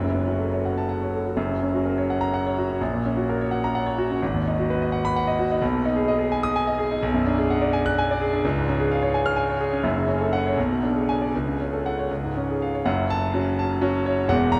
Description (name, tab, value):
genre	classical, virtuoso piano study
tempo	78-87 BPM (dotted quarters)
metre	6/8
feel	rubato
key	F# major, F# minor from 7.0 s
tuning	A4 = 442 Hz
part	clear concert grand piano	solo	0.0-14.6 s	E1 to F#6	-24 LUFS	equal	none
room	wet huge ambient reverb, RT60 7.5 s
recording	in a vast, echoing space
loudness	-24 LUFS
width	mono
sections	0.0-1.4 A section; 1.4-12.9 B section; 12.9-14.6 C section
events	none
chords	0.0 F#m; 1.4 F#; 2.8 F#/A#; 4.2 G#m7; 5.6 G#m/B; 7.0 G#m7b5/B; 8.4 C#; 9.8 F#m; 10.6 G#dim/B; 11.3 F#m/C#; 12.1 C#; 12.9 F#m